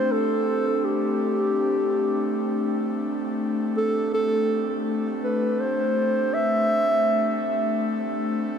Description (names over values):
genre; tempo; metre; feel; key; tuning
ambient; free time; none; none; A minor; A4 = 441 Hz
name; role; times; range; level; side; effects
dark clarinet; melody; 0.0-7.8 s; G4 to E5; -24 LUFS; right 1 dB; dub echo
airy breathy pad; sustained chords; 0.0-8.6 s; A3 to G4; -25 LUFS; left 1 dB; chorus
room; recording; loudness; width
wet scoring stage reverb, RT60 1.6 s, small room ambience; none; -21 LUFS; side -7 dB against mid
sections
0.0-8.6 A section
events
none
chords
0.0 Am7